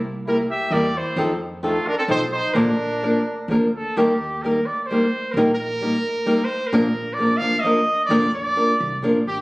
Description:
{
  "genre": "mexican folk, mariachi",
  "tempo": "131 BPM",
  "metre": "3/4",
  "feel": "rubato",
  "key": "Bb major, Eb major from 4.0 s",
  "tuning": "A4 = 439 Hz",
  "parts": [
    { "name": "upright bass", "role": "bass", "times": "0.0-9.4 s", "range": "Ab1 to F2", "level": "-32 LUFS", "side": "equal", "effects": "none" },
    { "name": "bright trumpet", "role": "melody", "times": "0.3-9.4 s", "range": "F4 to F5", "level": "-23 LUFS", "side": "right 1 dB", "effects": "none" },
    { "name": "mellow trumpet", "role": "second line", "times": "0.3-3.5 s", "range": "A3 to G4", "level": "-29 LUFS", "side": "right 1 dB", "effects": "none" },
    { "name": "flamenco guitar", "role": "accompaniment", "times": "0.3-9.2 s", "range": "Bb2 to Bb4", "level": "-20 LUFS", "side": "equal", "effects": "none" }
  ],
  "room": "moderate recital hall reverb, RT60 1.4 s",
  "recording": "recorded on a phone in the room, studio reverb, compression",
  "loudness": "-18 LUFS",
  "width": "side -22 dB against mid",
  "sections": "0.0-4.0 A section; 4.0-9.4 B section",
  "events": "none",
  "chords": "0.0 C7; 1.2 F7; 2.6 Bb; 4.0 Eb; 6.7 Bb"
}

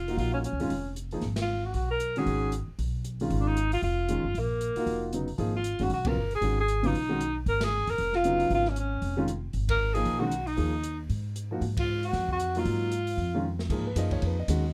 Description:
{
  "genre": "modal jazz",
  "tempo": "231 BPM",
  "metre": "4/4",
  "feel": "swing 59% on 8ths",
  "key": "G# dorian",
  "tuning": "A4 = 440 Hz",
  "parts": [
    { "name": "breathy alto saxophone", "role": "melody", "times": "0.0-13.5 s", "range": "A#3 to A#4", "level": "-32 LUFS", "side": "equal", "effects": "none" },
    { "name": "upright bass", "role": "bass", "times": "0.0-14.7 s", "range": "E#1 to G#2", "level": "-33 LUFS", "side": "equal", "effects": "none" },
    { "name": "warm concert grand piano", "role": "accompaniment", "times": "0.1-14.7 s", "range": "C#3 to D#5", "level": "-33 LUFS", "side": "equal", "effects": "none" },
    { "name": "open jazz drum kit", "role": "drums", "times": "0.1-14.6 s", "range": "crash cymbal, hi-hat, kick drum, ride cymbal, snare drum", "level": "-41 LUFS", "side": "equal", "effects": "none" }
  ],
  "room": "light reverb",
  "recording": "close, detailed microphones",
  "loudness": "-29 LUFS",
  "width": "mono",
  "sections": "0.0-13.7 A section; 13.7-14.7 B section",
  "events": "band accent 1.4, 6.0, 7.6, 9.7, 11.8; drum fill 13.4",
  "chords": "0.0 A#m; 1.2 G#m7; 3.3 A#m; 5.4 G#m7; 7.5 A#m; 9.5 G#madd9; 11.6 A#5; 13.7 G#m9"
}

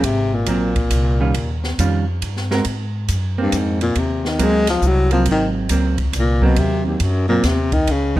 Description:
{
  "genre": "jazz, small-group swing and bop",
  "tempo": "138 BPM",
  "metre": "3/4",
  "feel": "swing 66% on 8ths",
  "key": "Ab major",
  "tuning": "A4 = 443 Hz",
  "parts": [
    { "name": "mellow baritone saxophone", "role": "melody", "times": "0.0-8.2 s", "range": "Eb2 to Ab3", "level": "-19 LUFS", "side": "left 2 dB", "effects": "none" },
    { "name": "hollow-body jazz guitar", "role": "accompaniment", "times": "0.0-8.2 s", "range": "Eb3 to Bb4", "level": "-22 LUFS", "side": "right 4 dB", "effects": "none" },
    { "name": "upright bass", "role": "bass", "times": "0.0-8.2 s", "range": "Ab1 to Ab2", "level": "-20 LUFS", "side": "equal", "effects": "none" },
    { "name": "open jazz drum kit", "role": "drums", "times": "0.0-8.2 s", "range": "hi-hat, kick drum, ride cymbal, snare drum", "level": "-25 LUFS", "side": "equal", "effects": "none" }
  ],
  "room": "light reverb",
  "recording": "none",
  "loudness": "-16 LUFS",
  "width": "side -15 dB against mid",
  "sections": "0.0-2.6 A section; 2.6-8.2 B section",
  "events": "baritone saxophone solo 2.6-8.2",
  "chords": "0.0 Ab9; 1.3 Eb9; 2.6 Ab9"
}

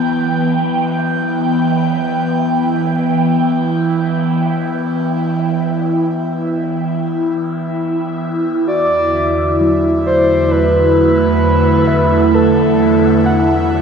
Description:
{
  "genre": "ambient",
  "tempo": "free time",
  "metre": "none",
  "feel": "none",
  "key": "E minor",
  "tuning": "A4 = 440 Hz",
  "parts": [
    { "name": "airy breathy pad", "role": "sustained chords", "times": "0.0-13.8 s", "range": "E2 to G5", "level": "-14 LUFS", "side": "right 1 dB", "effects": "chorus, phaser" },
    { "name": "muted felt-like synth keys", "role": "arpeggios", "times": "0.0-13.8 s", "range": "F#3 to A5", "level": "-25 LUFS", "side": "equal", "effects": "chorus, tape echo" },
    { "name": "breathy flute-like synth lead", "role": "melody", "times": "8.7-13.7 s", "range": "A4 to D5", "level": "-15 LUFS", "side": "equal", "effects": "chorus, cassette tape, tape echo" }
  ],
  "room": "wet plate reverb, RT60 3.4 s",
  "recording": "dreamy mix soaked in reverb",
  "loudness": "-12 LUFS",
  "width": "side -6 dB against mid",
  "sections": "0.0-13.8 A section",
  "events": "fade-in on synth keys 0.0-13.8",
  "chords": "0.0 Em; 8.7 D6/E"
}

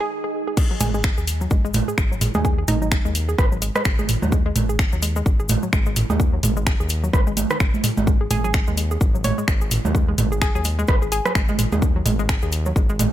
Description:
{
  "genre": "minimal techno",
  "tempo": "128 BPM",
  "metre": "4/4",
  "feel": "swing 58% on 16ths",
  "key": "unclear",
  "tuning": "A4 = 440 Hz",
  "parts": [
    { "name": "hollow square pluck", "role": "melody", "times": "0.0-2.9, 8.3-11.8 s", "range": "D#4 to C#5", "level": "-29 LUFS", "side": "right 1 dB", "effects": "chorus, dub echo" },
    { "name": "hollow square pluck", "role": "riff", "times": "0.0-13.0 s", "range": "D#3 to G#4", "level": "-29 LUFS", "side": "left 1 dB", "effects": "chorus, sidechain pumping, ping-pong delay" },
    { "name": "electronic kick drum", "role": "drums", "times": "0.6-12.9 s", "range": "none", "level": "-20 LUFS", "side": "equal", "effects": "studio ambience" },
    { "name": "house drum kit", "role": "drums", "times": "0.6-13.1 s", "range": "crash cymbal, finger snaps, hi-hat", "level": "-26 LUFS", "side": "left 1 dB", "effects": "studio ambience" },
    { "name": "cabasa", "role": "percussion", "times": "0.6-13.1 s", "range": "none", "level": "-33 LUFS", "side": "left 5 dB", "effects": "none" },
    { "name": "round analog bass", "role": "bass", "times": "0.8-13.1 s", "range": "G#1 to D#2", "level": "-24 LUFS", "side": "equal", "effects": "tube saturation, sidechain pumping" },
    { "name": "organic electronic drum kit", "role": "percussion", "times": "0.8-13.1 s", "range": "congas, rim click, toms", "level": "-23 LUFS", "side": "right 2 dB", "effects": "studio ambience" }
  ],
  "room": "little or no reverb",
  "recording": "none",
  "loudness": "-18 LUFS",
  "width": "side -12 dB against mid",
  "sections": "0.6-13.1 A section",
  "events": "break 0.1-0.6; drop 0.6-13.1",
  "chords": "0.0 G#5"
}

